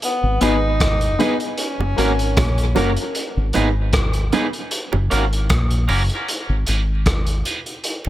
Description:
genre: dub reggae.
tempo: 77 BPM.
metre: 4/4.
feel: straight.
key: G# minor.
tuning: A4 = 440 Hz.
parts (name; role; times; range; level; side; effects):
clear tenor saxophone; melody; 0.0-2.7 s; B3 to D#4; -24 LUFS; equal; tape echo.
crunchy breakbeat drum kit; drums; 0.0-8.0 s; hi-hat, kick drum, rim click; -23 LUFS; equal; none.
deep dub fingered electric bass; bass; 0.2-8.1 s; F#1 to A#1; -19 LUFS; equal; none.
electric guitar at the edge of break-up; accompaniment; 0.4-8.1 s; A#3 to B4; -24 LUFS; right 2 dB; high-pass filter, tape echo.
warm upright piano; stabs; 0.4-2.9 s; A#3 to B4; -25 LUFS; left 5 dB; tape echo.
bongos; percussion; 0.4-8.1 s; none; -26 LUFS; right 7 dB; high-pass filter on perc, tape echo.
room: light reverb, small room ambience.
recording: none.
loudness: -17 LUFS.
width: side -14 dB against mid.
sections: 0.0-8.1 A section.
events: filter sweep 3.2-8.1; break 6.3-8.1.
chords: 0.0 G#m; 1.6 F#; 3.2 G#m; 4.7 F#; 6.3 G#m.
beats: | 0.03 0.81 1.59 2.37 | 3.15 3.93 4.71 5.50 | 6.28 7.06 7.84.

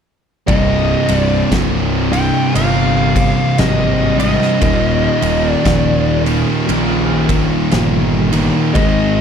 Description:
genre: stoner and doom metal.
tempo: 58 BPM.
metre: 4/4.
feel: swing 59% on 8ths.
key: C minor.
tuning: A4 = 440 Hz.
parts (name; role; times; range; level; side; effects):
fuzz lead guitar; melody; 0.5-9.2 s; Eb5 to G5; -18 LUFS; left 1 dB; wah, distortion, slapback echo.
thick fuzz guitar; riff; 0.5-9.2 s; C2 to Ab3; -20 LUFS; left 11 dB; distortion.
thick fuzz guitar; riff; 0.5-9.2 s; C2 to Ab3; -18 LUFS; right 8 dB; distortion.
tight distorted guitar; riff; 0.5-9.2 s; C2 to Ab3; -21 LUFS; right 1 dB; distortion.
fuzz picked electric bass; bass; 0.5-9.2 s; C1 to Bb1; -19 LUFS; equal; overdrive.
oversized low-tuned drum kit; drums; 0.5-9.0 s; kick drum, ride cymbal, snare drum; -20 LUFS; equal; none.
room: little or no reverb.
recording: none.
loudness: -12 LUFS.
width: side -7 dB against mid.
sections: 0.5-9.2 A section.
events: none.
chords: 0.5 Cm; 4.6 Eb.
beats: | 0.49 1.52 2.55 3.59 | 4.62 5.65 6.68 7.72 | 8.75.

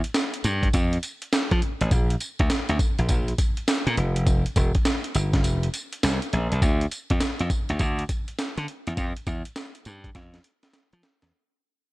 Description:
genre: R&B, new jack swing.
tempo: 102 BPM.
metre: 4/4.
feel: swing 64% on 16ths.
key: unclear.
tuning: A4 = 440 Hz.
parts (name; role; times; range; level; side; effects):
breakbeat sampler-style drum kit; drums; 0.0-11.3 s; hi-hat, kick drum, snare drum, tambourine; -24 LUFS; equal; vintage 12-bit sampler grit.
glassy slap bass; bass; 0.4-11.3 s; E1 to F3; -24 LUFS; equal; none.
room: light reverb, digital ambience.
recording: none.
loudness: -22 LUFS.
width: side -19 dB against mid.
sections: 0.0-6.6 A section; 6.6-11.3 B section.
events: break 5.4-6.6; fade-out 6.6-11.3; drum fill 10.1-11.3.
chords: none.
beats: 0.15 0.74 1.32 | 1.91 2.50 3.09 3.68 | 4.27 4.85 5.44 6.03 | 6.62 7.21 7.79 8.38 | 8.97 9.56 10.15 10.74.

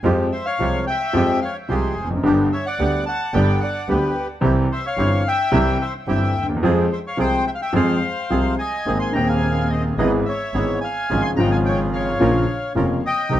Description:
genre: tango.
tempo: 109 BPM.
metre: 4/4.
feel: rubato.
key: F harmonic minor, Ab major from 8.9 s.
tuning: A4 = 440 Hz.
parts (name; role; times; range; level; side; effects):
warm concert grand piano; accompaniment; 0.0-13.4 s; Eb1 to Ab4; -20 LUFS; left 1 dB; none.
bandoneon; stabs; 0.0-13.4 s; Ab3 to Bb4; -29 LUFS; right 4 dB; none.
clear double bass; bass; 0.0-13.4 s; F1 to F2; -23 LUFS; right 1 dB; none.
bandoneon; melody; 0.3-13.4 s; G4 to C6; -24 LUFS; left 1 dB; plate reverb, tape echo.
room: moderate studio reverb, RT60 0.5 s.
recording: none.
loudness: -18 LUFS.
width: side -12 dB against mid.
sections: 0.0-8.9 A section; 8.9-13.4 B section.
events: none.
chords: 0.0 Fmadd9; 2.2 G; 4.4 C; 6.6 Fm; 8.9 Abadd9; 10.0 E/G#; 11.1 Db/Ab; 12.2 Bbm.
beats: | 0.04 0.60 1.15 1.70 | 2.25 2.80 3.35 3.89 | 4.44 4.98 5.53 6.07 | 6.62 7.18 7.73 8.30 | 8.86 9.42 9.98 10.54 | 11.10 11.65 12.21 12.76 | 13.31.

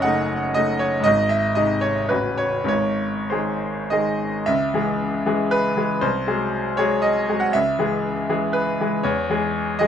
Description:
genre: classical, romantic character piece for solo piano.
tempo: 95-122 BPM.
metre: 3/4.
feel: rubato.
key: C# minor.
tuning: A4 = 440 Hz.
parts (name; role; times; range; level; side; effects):
bright grand piano; solo; 0.0-9.9 s; A0 to F#5; -19 LUFS; equal; none.
room: light reverb.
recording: none.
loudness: -19 LUFS.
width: side -8 dB against mid.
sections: 0.0-4.5 A section; 4.5-9.9 B section.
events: none.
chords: 0.0 D#m7b5/F#; 1.0 G#; 2.1 F#m/A; 2.7 G#; 4.5 C#m; 6.0 G#7/B#; 7.5 C#m; 9.0 C#m/E.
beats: 0.03 0.54 | 1.04 1.55 2.10 | 2.70 3.32 3.91 | 4.48 5.01 5.53 | 6.03 6.53 7.04 | 7.54 8.05 8.55 | 9.05 9.54.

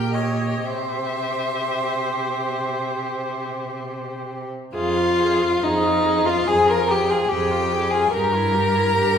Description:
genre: classical, slow romantic movement for string quartet.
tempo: 56-73 BPM.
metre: 4/4.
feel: rubato.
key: F minor.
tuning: A4 = 440 Hz.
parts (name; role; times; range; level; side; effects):
rich violin; melody; 0.0-9.2 s; Eb5 to Bb5; -29 LUFS; left 6 dB; none.
warm violin; second line; 0.0-9.2 s; Eb4 to Bb4; -21 LUFS; left 1 dB; none.
clear viola; accompaniment; 0.0-9.2 s; E4 to Db5; -27 LUFS; right 2 dB; none.
clear cello; bass; 0.0-9.2 s; F2 to C3; -27 LUFS; right 2 dB; none.
room: wet recital hall reverb, RT60 1.4 s.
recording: heard from further back in the room.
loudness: -19 LUFS.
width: side -8 dB against mid.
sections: 0.0-4.8 A section; 4.8-9.2 B section.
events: none.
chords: 0.0 Bbm6; 0.7 C; 4.8 Fm; 8.1 Edim/G.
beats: | 0.67 1.73 2.77 3.78 | 4.75 5.63 6.47 7.30 | 8.12 8.95.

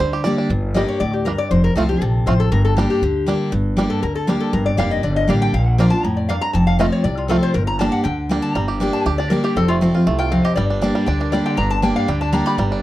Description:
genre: bluegrass.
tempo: 238 BPM.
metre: 4/4.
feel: straight.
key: G minor.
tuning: A4 = 440 Hz.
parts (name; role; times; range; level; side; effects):
bluegrass banjo; melody; 0.0-12.8 s; D3 to D5; -24 LUFS; right 5 dB; none.
picked steel-string acoustic guitar; accompaniment; 0.0-12.8 s; F2 to G4; -19 LUFS; equal; none.
upright bass; bass; 0.0-12.8 s; F1 to F2; -21 LUFS; equal; none.
lap resonator guitar; second line; 0.7-12.8 s; F4 to B5; -23 LUFS; left 3 dB; none.
room: light reverb.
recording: dry, close 1970s-style studio recording.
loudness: -16 LUFS.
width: side -15 dB against mid.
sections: 0.5-8.6 A section; 8.6-12.8 A section.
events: resonator guitar played with a steel bar solo 0.5-12.8.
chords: 0.0 Gm; 1.5 F; 2.5 Gm; 5.5 Bb; 6.5 F; 7.5 Gm; 9.6 F; 10.6 Gm.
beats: 0.00 0.25 | 0.50 0.75 1.01 1.26 | 1.51 1.76 2.01 2.27 | 2.52 2.77 3.02 3.27 | 3.52 3.77 4.03 4.28 | 4.53 4.78 5.03 5.29 | 5.54 5.79 6.04 6.29 | 6.54 6.79 7.05 7.30 | 7.55 7.80 8.05 8.30 | 8.56 8.81 9.06 9.31 | 9.56 9.81 10.07 10.32 | 10.57 10.82 11.07 11.33 | 11.58 11.83 12.08 12.33 | 12.59.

